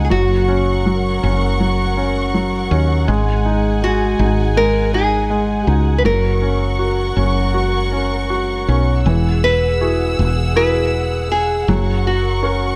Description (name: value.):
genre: pop ballad.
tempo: 80 BPM.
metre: 4/4.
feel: straight.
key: unclear.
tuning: A4 = 440 Hz.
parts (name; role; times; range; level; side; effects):
nylon-string guitar; melody; 0.0-12.8 s; F#4 to B4; -21 LUFS; equal; none.
clear concert grand piano; accompaniment; 0.0-12.8 s; E3 to A#4; -23 LUFS; equal; none.
warm studio string section; sustained chords; 0.0-12.8 s; G#4 to E6; -27 LUFS; equal; none.
woody fretless electric bass; bass; 0.0-12.8 s; E1 to D#2; -20 LUFS; equal; none.
room: light reverb, studio reverb.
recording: none.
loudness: -17 LUFS.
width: mono.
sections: 0.0-9.1 A section; 9.1-12.8 B section.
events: none.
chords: 0.1 F#; 3.1 G#5; 6.0 F#; 9.1 Eadd9; 11.7 F#.